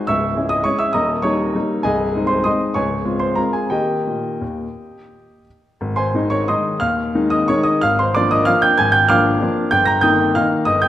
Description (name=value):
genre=classical, piano waltz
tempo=167-212 BPM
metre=3/4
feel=rubato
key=Ab major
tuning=A4 = 440 Hz
part: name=clear baby grand piano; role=solo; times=0.0-10.9 s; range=C1 to Bb6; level=-15 LUFS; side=equal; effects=none
room=wet recital hall reverb, RT60 1.7 s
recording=none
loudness=-15 LUFS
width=side -12 dB against mid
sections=0.0-5.8 A section; 5.8-10.9 B section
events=none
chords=0.1 Dbm; 1.0 Eb; 1.9 Ab/C; 2.8 Dbmaj7; 3.7 Eb; 5.8 Ab; 7.8 Bb7/Ab; 9.7 Eb/G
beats=| 0.07 0.36 0.66 | 0.95 1.25 1.55 | 1.85 2.15 2.46 | 2.76 3.05 3.38 | 3.72 4.07 4.42 | 4.77 5.11 5.46 | 5.80 6.14 6.49 | 6.81 7.14 7.48 | 7.82 8.15 8.47 | 8.78 9.10 9.41 | 9.73 10.04 10.36 | 10.68